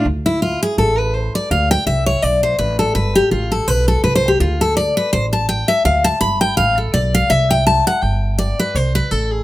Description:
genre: bluegrass.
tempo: 166 BPM.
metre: 4/4.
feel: swing 56% on 8ths.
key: D dorian.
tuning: A4 = 440 Hz.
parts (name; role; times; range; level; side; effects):
picked steel-string acoustic guitar; accompaniment; 0.0-9.4 s; E4 to B5; -15 LUFS; left 1 dB; none.
upright bass; bass; 0.1-9.4 s; G1 to D2; -19 LUFS; right 1 dB; none.
room: light reverb.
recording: close, detailed microphones.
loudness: -14 LUFS.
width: side -16 dB against mid.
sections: 0.1-9.4 A section.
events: steel-string acoustic guitar solo 0.1-9.4.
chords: 0.1 D5; 3.0 G; 4.4 D5; 7.3 C5.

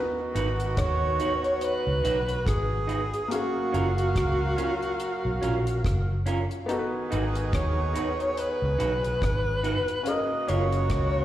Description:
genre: lovers rock reggae.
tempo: 71 BPM.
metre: 4/4.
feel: swing 58% on 16ths.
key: unclear.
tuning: A4 = 440 Hz.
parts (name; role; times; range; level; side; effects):
warm horn section; second line; 0.0-11.2 s; C#3 to E#5; -35 LUFS; right 2 dB; slapback echo.
clear concert grand piano; accompaniment; 0.0-11.2 s; A#3 to E#5; -34 LUFS; left 2 dB; tape echo, slapback echo.
electric guitar through a small old amp; stabs; 0.3-10.6 s; C#4 to B4; -33 LUFS; right 5 dB; slapback echo.
vintage muted fingered electric bass; bass; 0.4-11.2 s; F#1 to D#2; -27 LUFS; equal; none.
deep reggae drum kit; drums; 0.4-11.1 s; hi-hat, kick drum, rim click; -30 LUFS; equal; none.
breathy alto saxophone; melody; 0.8-11.2 s; F#4 to D#5; -28 LUFS; equal; tape echo, slapback echo.
room: light reverb, small room ambience.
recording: live gig heard through the venue's PA, recital hall reverb.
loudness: -24 LUFS.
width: side -13 dB against mid.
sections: 0.0-11.2 A section.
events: none.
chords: 0.0 G#m7; 3.3 F#maj7; 6.7 G#m7; 10.1 F#maj7.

